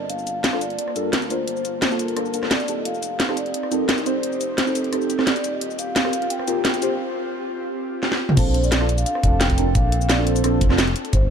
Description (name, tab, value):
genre	liquid drum and bass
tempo	174 BPM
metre	4/4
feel	straight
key	unclear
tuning	A4 = 441 Hz
part	vibraphone with soft mallets	melody	0.0-11.3 s	A4 to G5	-28 LUFS	left 1 dB	low-pass filter, dub echo
part	airy breathy pad	sustained chords	0.0-11.3 s	Bb3 to A5	-30 LUFS	equal	chorus, sidechain pumping
part	smooth synth bass	bass	0.0-11.3 s	D1 to G2	-26 LUFS	equal	high-pass filter
part	drum and bass drum kit	drums	0.1-11.2 s	cabasa, crash cymbal, hi-hat, rim click, snare drum, toms	-23 LUFS	equal	none
part	deep mellow chord stab	accompaniment	0.5-10.8 s	Bb3 to C5	-26 LUFS	right 1 dB	chorus, phaser, dub echo
part	electronic kick drum	drums	8.4-11.2 s	none	-20 LUFS	equal	none
room	light reverb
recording	none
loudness	-19 LUFS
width	side -7 dB against mid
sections	0.0-8.4 A section; 8.4-11.3 B section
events	build-up 0.0-8.4; filter sweep on vibraphone 0.0-8.4; break 7.0-8.4; drum fill 8.0-8.4; drop 8.4-11.3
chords	0.0 Gm7; 2.9 F7; 5.4 Eb6; 8.4 Bbmaj9